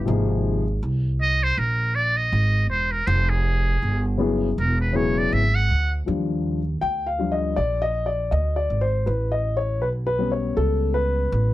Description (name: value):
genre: hip hop, jazz-hop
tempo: 80 BPM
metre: 4/4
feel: swing 58% on 16ths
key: unclear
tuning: A4 = 438 Hz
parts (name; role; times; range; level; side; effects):
- trumpet with metal mute; melody; 0.0-5.9 s; Ab4 to F#5; -23 LUFS; right 2 dB; none
- dark grand piano; accompaniment; 0.0-11.5 s; C3 to G5; -23 LUFS; left 3 dB; none
- upright bass; bass; 0.0-11.5 s; Fb1 to Eb2; -23 LUFS; right 1 dB; none
room: little or no reverb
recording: dark, warm production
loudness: -20 LUFS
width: side -15 dB against mid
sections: 0.0-6.1 A section; 6.1-11.5 A section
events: muted trumpet solo 0.0-6.1; grand piano solo 6.1-11.5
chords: 0.1 Ab69; 3.1 Fmadd9; 4.6 E9; 6.1 Ebmaj9; 9.1 A9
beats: | 0.07 0.82 1.57 2.32 | 3.07 3.82 4.57 5.32 | 6.07 6.82 7.57 8.32 | 9.07 9.82 10.57 11.32